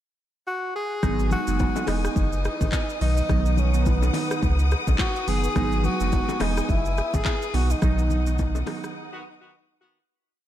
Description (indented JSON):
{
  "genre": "afrobeats",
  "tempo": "106 BPM",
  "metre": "4/4",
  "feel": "swing 58% on 16ths",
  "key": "B major",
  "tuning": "A4 = 440 Hz",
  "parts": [
    { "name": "breathy tenor saxophone", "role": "melody", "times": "0.5-8.8 s", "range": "B3 to G#4", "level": "-30 LUFS", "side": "equal", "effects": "diffuse ambient delay" },
    { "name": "glassy digital keys", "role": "accompaniment", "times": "1.0-8.9 s", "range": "D#3 to D#4", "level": "-30 LUFS", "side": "right 5 dB", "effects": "chorus" },
    { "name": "warm studio string section", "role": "sustained chords", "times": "1.0-10.1 s", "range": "E3 to D#6", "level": "-32 LUFS", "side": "left 2 dB", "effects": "none" },
    { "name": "saturated sub bass", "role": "bass", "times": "1.0-8.6 s", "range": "E1 to C#2", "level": "-23 LUFS", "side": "equal", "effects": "none" },
    { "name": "afro-pop drum kit", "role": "drums", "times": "1.0-8.9 s", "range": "handclaps, hi-hat, kick drum, rim click, shaker", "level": "-27 LUFS", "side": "equal", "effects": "none" },
    { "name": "congas and bongos", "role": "percussion", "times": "1.0-8.8 s", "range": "none", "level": "-33 LUFS", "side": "left 8 dB", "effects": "none" },
    { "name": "mellow horn section", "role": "second line", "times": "9.1-10.0 s", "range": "D#3 to F#4", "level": "-42 LUFS", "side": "left 2 dB", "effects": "none" }
  ],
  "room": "light reverb, small room ambience",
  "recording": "none",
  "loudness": "-21 LUFS",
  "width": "side -12 dB against mid",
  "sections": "0.0-1.0 pickup bar; 1.0-10.1 chorus",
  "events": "fade-out 7.8-10.1; band accent 7.8-10.1; break 9.0-10.1",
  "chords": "0.0 N.C.; 1.0 G#m7; 1.9 Emaj7; 3.0 B; 5.6 G#m7; 6.4 Emaj7; 7.5 B"
}